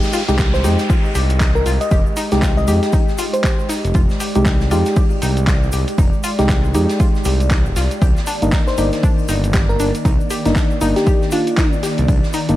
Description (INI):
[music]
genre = deep house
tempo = 118 BPM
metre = 4/4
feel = swing 59% on 16ths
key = F dorian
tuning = A4 = 440 Hz
[part]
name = airy breathy pad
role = sustained chords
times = 0.3-12.6 s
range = Eb3 to Eb5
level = -26 LUFS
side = equal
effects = chorus, sidechain pumping
[part]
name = percussive organ stab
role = stabs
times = 0.0-12.6 s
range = Ab3 to G4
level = -22 LUFS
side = equal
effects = chorus, vintage 12-bit sampler grit, sidechain pumping
[part]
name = big rock drum kit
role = drums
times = 0.0-12.5 s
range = hi-hat, snare drum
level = -34 LUFS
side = right 1 dB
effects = high-pass filter on hats, high-pass filter on snare, high-pass filter on room
[part]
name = egg shaker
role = percussion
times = 0.0-12.6 s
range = none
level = -34 LUFS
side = right 2 dB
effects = none
[part]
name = downlifter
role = sound effects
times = 0.0-3.9 s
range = none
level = -30 LUFS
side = equal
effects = none
[part]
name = analog pluck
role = arpeggios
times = 0.1-12.4 s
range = D4 to G4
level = -27 LUFS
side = left 3 dB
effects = chorus, sidechain pumping, tape echo
[part]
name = dusty soul sampler-style drum kit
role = drums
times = 0.1-12.6 s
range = handclaps, hi-hat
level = -27 LUFS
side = right 1 dB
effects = none
[part]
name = smooth synth bass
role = bass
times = 0.3-12.6 s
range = Eb1 to F2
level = -18 LUFS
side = equal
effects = sidechain pumping
[part]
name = electronic kick drum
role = drums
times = 0.4-12.2 s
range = none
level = -16 LUFS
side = equal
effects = overdrive
[part]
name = bell-like FM electric piano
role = melody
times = 0.5-3.7, 8.7-11.7 s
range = F4 to Eb5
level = -23 LUFS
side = left 1 dB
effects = chorus, cassette tape, tape echo
[sound]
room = light reverb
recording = vinyl crackle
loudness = -14 LUFS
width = side -15 dB against mid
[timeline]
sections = 0.0-12.6 A section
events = none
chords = 0.0 Fm9; 8.0 Cm9 (rootless)